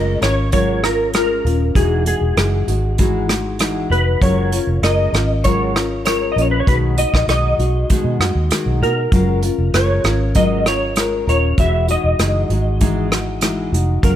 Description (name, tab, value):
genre	indie pop, bedroom pop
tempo	98 BPM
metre	4/4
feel	straight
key	F# major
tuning	A4 = 439 Hz
part	clean lap steel guitar	melody	0.0-14.2 s	G#4 to E5	-21 LUFS	equal	ensemble chorus, slapback echo
part	nylon-string guitar	accompaniment	0.0-14.2 s	B2 to A#4	-20 LUFS	left 3 dB	wide subtle chorus, warbly pitch drift
part	vintage muted fingered electric bass	bass	0.0-14.2 s	D#1 to B2	-19 LUFS	equal	none
part	unplugged drum kit	drums	0.2-14.2 s	hi-hat, kick drum, rim click	-19 LUFS	right 1 dB	none
room	little or no reverb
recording	none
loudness	-14 LUFS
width	side -11 dB against mid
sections	0.0-14.2 A section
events	none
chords	0.0 F#maj9; 1.8 Emaj9; 4.2 F#maj9; 6.7 B6; 9.1 F#maj9; 11.6 Emaj9